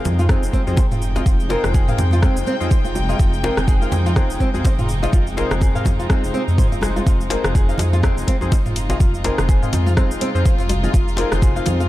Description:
afro house; 124 BPM; 4/4; swing 58% on 16ths; F minor; A4 = 440 Hz
warm chamber string section; sustained chords; 0.0-11.9 s; C3 to G5; -28 LUFS; equal; sidechain pumping
flamenco guitar; arpeggios; 0.0-11.9 s; C4 to F5; -26 LUFS; equal; sidechain pumping, digital delay
warm analog keys; stabs; 0.0-11.9 s; C4 to Eb5; -27 LUFS; left 3 dB; chorus, sidechain pumping, digital delay
dark detuned saw bass; bass; 0.1-11.9 s; F1 to F2; -21 LUFS; equal; sidechain pumping
afro-pop drum kit; drums; 0.1-11.9 s; hi-hat, rim click, shaker, toms; -27 LUFS; equal
congas; percussion; 0.1-11.9 s; -29 LUFS; right 2 dB
djembe; percussion; 0.1-11.8 s; -30 LUFS; left 1 dB
electronic kick drum; drums; 0.3-11.5 s; -17 LUFS; equal
little or no reverb; dark, warm production; -15 LUFS; side -16 dB against mid
0.0-11.9 A section
0.0 Fm7

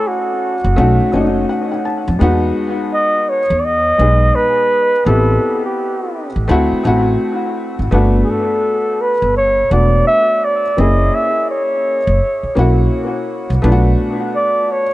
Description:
hip hop; 84 BPM; 4/4; swing 62% on 16ths; F# dorian; A4 = 435 Hz
breathy flugelhorn; melody; 0.0-14.9 s; F#4 to E5; -16 LUFS; equal; dub echo
dark upright piano; accompaniment; 0.0-14.9 s; G#3 to A5; -18 LUFS; left 2 dB; dub echo
upright bass; bass; 0.6-13.9 s; E1 to E#2; -15 LUFS; equal
light reverb, small room ambience; echo-heavy mix, nothing above 10.4 kHz; -12 LUFS; side -17 dB against mid
0.0-14.9 A section
upright piano fill 0.8-2.2
0.0 F#m7; 0.8 B7; 2.2 Emaj7; 5.1 Am7; 6.5 D7; 7.9 Gmaj7; 10.8 F#7; 13.6 Bm7

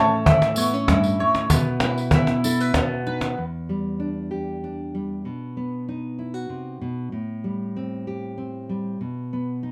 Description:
acoustic folk duo or small band; 96 BPM; 3/4; straight; E harmonic minor from 3.4 s; A4 = 442 Hz
felt-muted upright piano; melody; 0.0-2.7 s; E5 to A5; -28 LUFS; equal
nylon-string guitar; accompaniment; 0.0-9.7 s; E2 to G4; -28 LUFS; equal
mandolin; arpeggios; 0.0-3.4 s; A3 to C#5; -27 LUFS; equal
cajon; percussion; 0.1-3.4 s; -23 LUFS; equal
tambourine; percussion; 0.6-2.7 s; -34 LUFS; equal
moderate studio reverb, RT60 0.5 s; dark, warm production; -24 LUFS; mono
0.0-3.4 A section; 3.4-9.7 B section
0.0 A; 1.5 Bsus4; 2.8 B; 3.4 Em7; 5.2 B; 7.1 Am7; 9.0 B

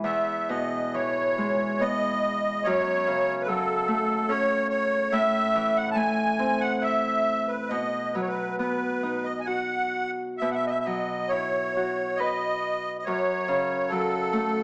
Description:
celtic folk, Celtic slow air; 64-74 BPM; 3/4; rubato; E major; A4 = 439 Hz
musette accordion; melody; 0.0-14.6 s; A4 to A5; -25 LUFS; equal
Celtic harp; accompaniment; 0.0-14.6 s; E2 to B4; -28 LUFS; equal
moderate recital hall reverb, RT60 1.3 s; small speaker sound; -23 LUFS; side -30 dB against mid
0.0-14.6 A section
0.0 E; 2.7 F#m; 5.1 Am; 7.7 B; 10.4 Bsus4; 13.0 F#m

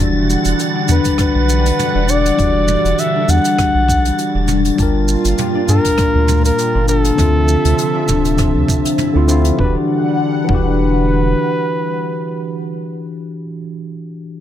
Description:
sunset chillout; 100 BPM; 4/4; swing 55% on 16ths; A4 = 440 Hz
tine electric piano; accompaniment; 0.0-14.4 s; D3 to A5; -21 LUFS; moving between left 4 dB and right 5 dB; auto-pan, digital delay
lush unison pad; sustained chords; 0.0-12.7 s; Bb2 to F#5; -22 LUFS; equal; chorus, phaser
concert harp; arpeggios; 0.0-13.3 s; D4 to G4; -20 LUFS; left 6 dB; digital delay
round analog bass; bass; 0.0-11.3 s; D1 to G2; -16 LUFS; right 1 dB
wind-like tuned noise texture; texture; 0.0-9.6 s; A6; -30 LUFS; right 2 dB; built-in reverb
jazz brush drum kit; drums; 0.3-9.6 s; hi-hat, rim click, shaker, toms; -24 LUFS; equal
mellow flugelhorn; melody; 0.9-12.8 s; A4 to F#5; -19 LUFS; equal; digital delay
electronic kick drum; drums; 1.1-10.7 s; -19 LUFS; right 1 dB
light reverb, small room ambience; -13 LUFS; side -11 dB against mid
0.0-9.6 A section; 9.6-12.0 B section
0.0 Em9; 4.8 Gm9; 7.2 Dm9; 9.6 Em9

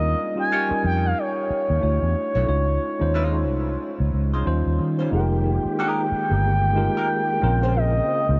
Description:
R&B, neo-soul; 91 BPM; 4/4; swing 59% on 16ths; F minor; A4 = 441 Hz
expressive synth lead; melody; 0.0-8.4 s; Db5 to Ab5; -27 LUFS; equal; chorus
tine electric piano; accompaniment; 0.0-8.4 s; Gb3 to C#5; -30 LUFS; equal; subtle chorus
vintage muted fingered electric bass; bass; 0.0-8.4 s; F1 to Eb3; -24 LUFS; equal
hollow-body jazz guitar; second line; 0.5-7.7 s; G3 to Db5; -35 LUFS; equal; wah, subtle chorus, analog delay
tonewheel organ; sustained chords; 5.1-8.4 s; Db3 to G4; -31 LUFS; equal; slow rotary speaker, chorus vibrato
moderate huge ambient reverb, RT60 6.0 s; dreamy mix soaked in reverb, nothing above 8.0 kHz; -22 LUFS; mono
0.0-5.1 A section; 5.1-8.4 B section
0.0 Eb9; 1.8 Dmaj9; 2.5 Dbmaj9; 4.5 Eb13; 5.1 Fm11; 7.4 Bbm9

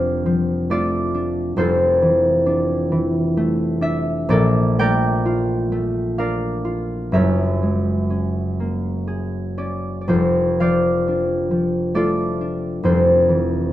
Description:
classical, solo harp piece; 57-69 BPM; 3/4; rubato; A4 = 440 Hz
concert harp; solo; 0.0-13.7 s; F1 to G5; -17 LUFS; equal
light reverb; close, detailed microphones; -17 LUFS; side -14 dB against mid
0.0-13.7 A section
0.0 F6; 1.6 Dm9/F; 4.3 Bbmaj7; 7.1 Gb9; 10.1 F6; 12.9 Dm9/F

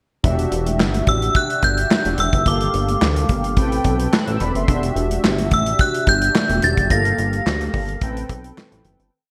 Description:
early-eighties boogie funk; 108 BPM; 4/4; straight; E minor; A4 = 440 Hz
mellow synth brass; accompaniment; 0.2-9.1 s; Bb3 to F#6; -26 LUFS; equal; chorus
chorused synth bass; bass; 0.2-9.1 s; E1 to D2; -24 LUFS; equal
modern studio drum kit; drums; 0.2-9.1 s; handclaps, hi-hat, kick drum, snare drum; -23 LUFS; equal; gated reverb
congas; percussion; 0.2-9.0 s; -32 LUFS; equal
metallic FM bell; melody; 1.1-8.0 s; D6 to Bb6; -23 LUFS; equal; chorus
light reverb, small room ambience; bright 1980s-style digital production; -19 LUFS; mono
0.2-9.1 verse
fade-out 6.9-9.1
0.2 Em9; 2.5 Gm9; 3.6 Am9; 4.7 Em9; 6.9 Gm9; 8.0 Am9

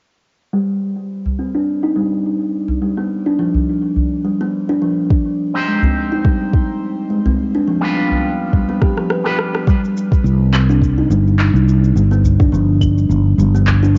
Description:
organic downtempo; 105 BPM; 4/4; swing 56% on 16ths; A4 = 440 Hz
kalimba; arpeggios; 0.5-14.0 s; F3 to B4; -20 LUFS; equal; low-pass filter, tape echo
udu; percussion; 1.3-13.8 s; -22 LUFS; equal
electronic kick drum; drums; 5.1-12.9 s; -16 LUFS; equal; cassette tape
electric guitar with an envelope filter; accompaniment; 5.5-9.4 s; G3 to C5; -25 LUFS; equal; sidechain pumping, tape echo, shimmer reverb
electronic rim click, shaker, handclaps and claves; drums; 8.8-13.9 s; -26 LUFS; equal; cassette tape
mellow fretless electric bass; bass; 10.2-14.0 s; G1 to C2; -15 LUFS; equal; sidechain pumping
light reverb; home recording on cassette, nothing above 7.6 kHz; -16 LUFS; mono
0.5-9.7 A section; 9.7-14.0 B section
filter sweep on kalimba 0.5-9.7; drum fill 8.8-9.7; kick drops out 9.1-9.7
0.5 N.C.; 2.8 G7(no3); 5.1 Abmaj7; 7.4 G7; 9.7 C5; 12.0 G7

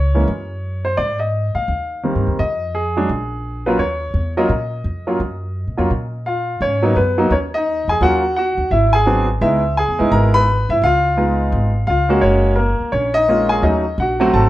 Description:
jazz; 171 BPM; 4/4; swing 63% on 8ths; Eb minor, G# minor from 6.6 s; A4 = 445 Hz
warm baby grand piano; melody; 0.0-14.5 s; Eb3 to B5; -16 LUFS; equal
upright bass; bass; 0.0-14.5 s; F#1 to Bb2; -20 LUFS; equal
light reverb; dark, warm production; -15 LUFS; side -15 dB against mid
0.0-6.6 A section; 6.6-14.5 B section
0.3 Gb5; 1.0 Abmaj7; 2.4 Fm7; 3.1 Bb7(no3); 3.8 Ebm9; 6.6 G#m7; 8.0 D#m7; 8.7 G#7alt; 9.4 C#m9; 10.8 C#9; 12.2 F#maj9; 13.6 D#m7b5

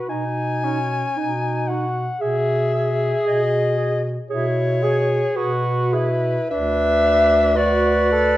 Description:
classical, lyrical piece for single-reed quartet; 57 BPM; 4/4; rubato; A4 = 438 Hz
warm soprano saxophone; melody; 0.0-8.4 s; B4 to G#5; -22 LUFS; left 2 dB
mellow tenor saxophone; accompaniment; 0.0-8.4 s; C#4 to A4; -23 LUFS; equal
mellow clarinet; second line; 0.1-8.4 s; D#4 to B4; -26 LUFS; right 4 dB
mellow bass clarinet; bass; 0.1-8.4 s; D2 to B2; -23 LUFS; right 1 dB
moderate recital hall reverb, RT60 1.3 s; worn, warbling old tape, cassette tape, warbly pitch drift; -17 LUFS; side -15 dB against mid
0.0-8.4 A section
0.0 B; 2.2 E/B; 6.5 Bm/D

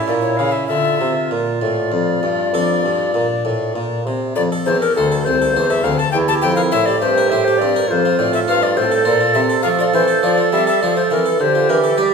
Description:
classical, baroque-style sonata movement with continuo; 67 BPM (dotted quarters); 12/8; uneven beats; D minor, F major from 4.4 s; A4 = 440 Hz
tenor recorder; melody; 0.0-12.1 s; G4 to A5; -19 LUFS; left 7 dB
bright baroque flute; second line; 0.0-12.1 s; E4 to A4; -20 LUFS; right 9 dB
harpsichord; accompaniment; 0.0-12.1 s; C2 to D5; -21 LUFS; left 1 dB
warm bassoon; bass; 0.1-12.1 s; C2 to G3; -21 LUFS; right 2 dB
wet recital hall reverb, RT60 1.8 s; minimal, uncompressed stereo recording; -14 LUFS; side -5 dB against mid
0.0-4.4 A section; 4.4-12.1 A section
0.0 A; 0.7 Dm; 4.4 F; 6.1 C7/E; 7.9 F; 11.4 Dm

